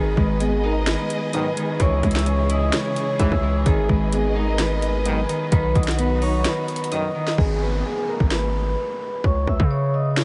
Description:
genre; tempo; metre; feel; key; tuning
hip hop, trap; 129 BPM; 4/4; half-time; G# minor; A4 = 441 Hz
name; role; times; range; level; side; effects
vibraphone with soft mallets; melody; 0.0-10.2 s; G#4 to E6; -28 LUFS; equal; low-pass filter, tape echo
Celtic harp; accompaniment; 0.0-9.1 s; D#3 to E5; -29 LUFS; equal; low-pass filter
dark symphonic string section; sustained chords; 0.0-7.4 s; C#3 to D#5; -33 LUFS; equal; none
distorted 808-style bass; bass; 0.0-10.2 s; G#1 to C#3; -25 LUFS; equal; distortion
trap drum kit; drums; 0.2-10.2 s; finger snaps, hi-hat, kick drum, snare drum; -25 LUFS; equal; none
mellow brass ensemble; stabs; 1.3-7.1 s; B1 to E3; -35 LUFS; equal; none
downlifter; sound effects; 7.4-10.2 s; none; -36 LUFS; equal; none
room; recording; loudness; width
moderate huge ambient reverb, RT60 7.4 s; dreamy mix soaked in reverb, nothing above 10.9 kHz; -21 LUFS; mono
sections
0.0-7.4 A section; 7.4-10.2 B section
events
break 6.5-7.4; hi-hats muted 7.4-10.2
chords
0.0 G#m; 1.8 C#m; 3.7 G#m; 5.5 B; 7.4 G#m; 9.2 C#m

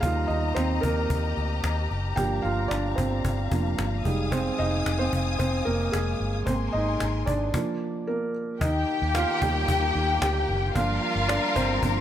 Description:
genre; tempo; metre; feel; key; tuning
piano-driven pop; 112 BPM; 4/4; straight; Eb major; A4 = 439 Hz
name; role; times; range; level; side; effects
felt-muted upright piano; accompaniment; 0.0-12.0 s; F3 to G5; -27 LUFS; right 2 dB; none
warm studio string section; sustained chords; 0.0-12.0 s; Eb3 to Eb6; -32 LUFS; left 5 dB; none
vintage muted fingered electric bass; bass; 0.0-12.0 s; F1 to Eb2; -28 LUFS; left 1 dB; none
cajon; drums; 0.0-12.0 s; none; -31 LUFS; left 1 dB; none
warm symphonic violin section; second line; 8.6-12.0 s; F4 to G5; -28 LUFS; left 2 dB; ping-pong delay
room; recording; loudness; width
light reverb, small room ambience; none; -23 LUFS; side -11 dB against mid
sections
0.0-8.6 A section; 8.6-12.0 B section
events
felt piano solo 0.0-8.6, 8.6-12.0; stop 7.5-8.6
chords
0.0 Eb; 2.2 Gm7; 4.1 Fm7; 6.5 Abadd9; 7.5 Bb; 8.6 Eb; 10.8 Gm7

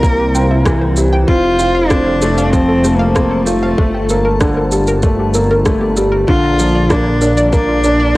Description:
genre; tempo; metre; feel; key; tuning
piano and strings electronica; 96 BPM; 4/4; straight; F major; A4 = 440 Hz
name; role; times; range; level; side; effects
rich cello; melody; 0.0-8.2 s; A3 to Bb4; -16 LUFS; equal; none
granular cloud pad; sustained chords; 0.0-8.2 s; F3 to Bb5; -23 LUFS; left 1 dB; built-in reverb, cassette tape
analog pluck; arpeggios; 0.0-8.2 s; D4 to C6; -23 LUFS; equal; chorus, sidechain pumping, cassette tape, tape echo
felt-muted upright piano; riff; 0.0-8.2 s; D3 to F4; -16 LUFS; equal; cassette tape, tape echo
dark detuned saw bass; bass; 0.0-8.2 s; G1 to C2; -17 LUFS; equal; sidechain pumping
electronic kick drum; drums; 0.0-7.7 s; none; -15 LUFS; equal; none
electronic shaker and rim click; drums; 0.0-8.0 s; none; -22 LUFS; equal; none
room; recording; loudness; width
moderate booth ambience, RT60 0.2 s; home recording on cassette; -11 LUFS; side -19 dB against mid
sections
0.0-8.2 A section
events
none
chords
0.0 C7; 1.3 F; 3.8 Gmadd9; 6.3 Bb

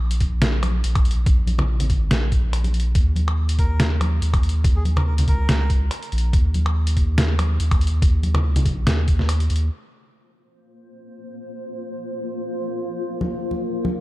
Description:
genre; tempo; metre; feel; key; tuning
deep dubstep; 142 BPM; 4/4; swing 54% on 16ths, half-time; unclear; A4 = 440 Hz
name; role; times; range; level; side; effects
saturated sub bass; bass; 0.0-9.7 s; Bb1 to Eb2; -20 LUFS; equal; none
trip hop sampler-style drum kit; drums; 0.1-9.6 s; finger snaps, hi-hat, snare drum; -25 LUFS; equal; none
electronic kick drum; drums; 0.2-9.2 s; none; -19 LUFS; equal; none
congas; percussion; 0.6-8.6, 13.2-13.9 s; none; -28 LUFS; left 1 dB; none
melodica; melody; 3.6-5.7 s; Ab4 to Bb4; -35 LUFS; right 1 dB; dub echo
granular cloud pad; sustained chords; 11.1-14.0 s; Bb3 to C5; -27 LUFS; left 1 dB; built-in reverb
room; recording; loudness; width
light reverb, digital ambience; dark, warm production; -18 LUFS; side -17 dB against mid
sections
0.0-9.7 A section; 9.7-14.0 B section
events
filter sweep on ambient pad 9.7-14.0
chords
0.0 Bb5; 3.0 Eb5; 9.7 Bb5

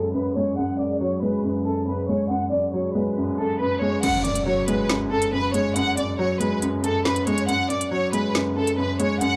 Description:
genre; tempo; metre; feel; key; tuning
hip hop, drill; 139 BPM; 4/4; half-time; F# minor; A4 = 440 Hz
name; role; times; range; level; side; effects
warm studio violin section; melody; 0.0-9.4 s; A4 to F#5; -28 LUFS; equal; none
dark baby grand piano; accompaniment; 0.0-9.4 s; F#2 to G#3; -26 LUFS; equal; none
airy breathy pad; sustained chords; 0.0-4.0 s; F#3 to G#4; -36 LUFS; equal; none
drill drum kit; drums; 4.0-9.3 s; crash cymbal, hi-hat, snare drum; -31 LUFS; equal; none
impact; sound effects; 4.0-5.8 s; none; -36 LUFS; equal; none
room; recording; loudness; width
little or no reverb; dry, gritty hardware recording, transformer saturation, low-pass filter; -23 LUFS; mono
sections
0.0-4.0 A section; 4.0-9.4 B section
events
filter sweep 0.0-4.0; kick muted 4.0-9.4; impact 4.0-5.8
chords
0.0 F#sus2

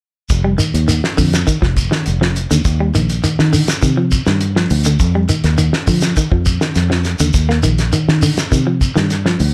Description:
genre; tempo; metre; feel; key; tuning
afrobeat; 102 BPM; 4/4; straight; unclear; A4 = 441 Hz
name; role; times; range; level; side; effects
fingered electric bass; bass; 0.3-9.5 s; F1 to F3; -18 LUFS; equal; none
cloth-damped thuddy drum kit; drums; 0.3-9.5 s; hi-hat, kick drum, snare drum; -21 LUFS; equal; none
shekere; percussion; 0.3-9.5 s; none; -24 LUFS; equal; none
semi-hollow electric guitar; arpeggios; 0.4-9.4 s; D3 to Bb3; -21 LUFS; equal; none
room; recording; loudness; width
light reverb; none; -15 LUFS; mono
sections
0.3-9.5 A section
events
none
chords
0.3 N.C.; 2.7 Ebmaj7; 5.0 N.C.; 7.3 Ebmaj7

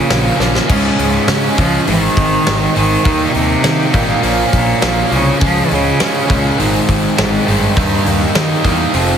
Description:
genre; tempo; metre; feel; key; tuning
quiet-loud alternative rock; 102 BPM; 4/4; straight; unclear; A4 = 440 Hz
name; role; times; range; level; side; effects
bright cello; melody; 0.0-8.6 s; G2 to F3; -17 LUFS; equal; digital delay
cranked stack guitar; riff; 0.0-9.2 s; Ab2 to F4; -19 LUFS; left 12 dB; overdrive
crunchy overdriven guitar; riff; 0.0-9.2 s; F2 to Eb4; -18 LUFS; right 11 dB; none
fuzz fingered electric bass; bass; 0.1-9.1 s; F1 to Eb3; -19 LUFS; equal; overdrive
big rock drum kit; drums; 0.1-9.1 s; crash cymbal, hi-hat, kick drum, snare drum; -18 LUFS; left 1 dB; none
mellow tonewheel organ; sustained chords; 0.7-9.2 s; Eb4 to Bb5; -28 LUFS; equal; none
room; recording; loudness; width
moderate studio reverb, RT60 0.9 s; heavily compressed radio sound; -11 LUFS; side -8 dB against mid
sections
0.0-9.2 A section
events
drum fill 0.4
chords
0.0 Bbm; 0.7 Db; 1.9 Ab; 3.1 Eb; 4.2 Bbm; 5.4 Db; 6.6 Ab; 7.8 Eb

